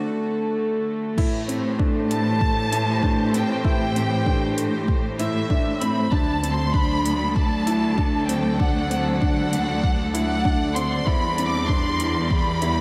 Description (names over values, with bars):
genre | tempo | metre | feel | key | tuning
piano and strings electronica | 97 BPM | 4/4 | straight | A dorian | A4 = 440 Hz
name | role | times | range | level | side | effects
warm studio string section | sustained chords | 0.0-12.8 s | D3 to D5 | -30 LUFS | equal | none
felt-muted upright piano | riff | 1.2-12.8 s | C4 to E4 | -31 LUFS | equal | subtle chorus, tape echo
rich studio cello section | bass | 1.2-12.8 s | D2 to A2 | -27 LUFS | equal | sidechain pumping
deep house drum kit | drums | 1.2-12.7 s | crash cymbal, hi-hat | -36 LUFS | equal | none
electronic kick drum | drums | 1.2-12.4 s | none | -25 LUFS | equal | none
dark studio violin section | melody | 2.1-12.8 s | E5 to D6 | -29 LUFS | equal | tape echo
room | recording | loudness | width
moderate lush hall reverb, RT60 2.8 s | dreamy mix soaked in reverb | -22 LUFS | mono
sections
0.0-1.2 A section; 1.2-12.8 B section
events
break 0.0-1.2; build-up 0.0-1.2; drop 1.2-12.8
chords
0.0 D; 1.2 Am7; 6.1 D; 11.1 Em7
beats
0.56 | 1.18 1.79 2.41 3.03 | 3.65 4.27 4.89 5.51 | 6.12 6.74 7.36 7.98 | 8.60 9.22 9.84 10.46 | 11.07 11.69 12.31